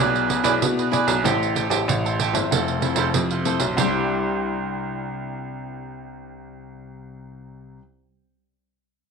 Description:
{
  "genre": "samba and choro",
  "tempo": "95 BPM",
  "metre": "4/4",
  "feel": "straight",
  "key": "C major",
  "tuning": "A4 = 439 Hz",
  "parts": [
    { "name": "cavaquinho", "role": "accompaniment", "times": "0.0-7.8 s", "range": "D4 to A5", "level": "-26 LUFS", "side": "right 9 dB", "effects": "none" },
    { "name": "nylon-string guitar", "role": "accompaniment", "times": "0.0-7.9 s", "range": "C3 to D5", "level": "-27 LUFS", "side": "left 11 dB", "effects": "none" },
    { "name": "bright baby grand piano", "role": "bass", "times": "0.0-7.8 s", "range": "F1 to B2", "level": "-26 LUFS", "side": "right 1 dB", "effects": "none" },
    { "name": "pandeiro", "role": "percussion", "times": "0.2-3.9 s", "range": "none", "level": "-25 LUFS", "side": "right 8 dB", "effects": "none" }
  ],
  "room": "moderate echo chamber reverb, RT60 1.7 s, studio reverb",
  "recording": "1960s-style stereo with parts hard left and right",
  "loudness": "-20 LUFS",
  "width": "side -5 dB against mid",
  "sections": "0.0-3.8 A section; 3.8-6.3 B section",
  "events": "none",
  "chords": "0.0 E7/B; 1.2 Am7; 2.5 Fmaj7; 3.8 Cadd9"
}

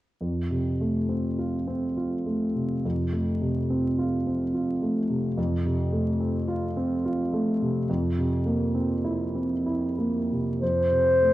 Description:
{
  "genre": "classical, romantic duo for clarinet and grand piano",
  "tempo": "59-73 BPM",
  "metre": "3/4",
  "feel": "rubato",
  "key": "F major",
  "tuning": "A4 = 438 Hz",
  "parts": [
    { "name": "dark baby grand piano", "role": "accompaniment", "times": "0.2-11.3 s", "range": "F2 to F4", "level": "-24 LUFS", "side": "equal", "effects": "none" },
    { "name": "dark clarinet", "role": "melody", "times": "10.6-11.3 s", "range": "C5", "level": "-19 LUFS", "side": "left 1 dB", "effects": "none" }
  ],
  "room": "wet scoring stage reverb, RT60 1.5 s",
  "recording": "vinyl crackle",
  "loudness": "-24 LUFS",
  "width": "side -15 dB against mid",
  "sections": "0.2-10.6 A section",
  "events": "none",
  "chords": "0.2 F; 7.9 C7/F; 10.6 F"
}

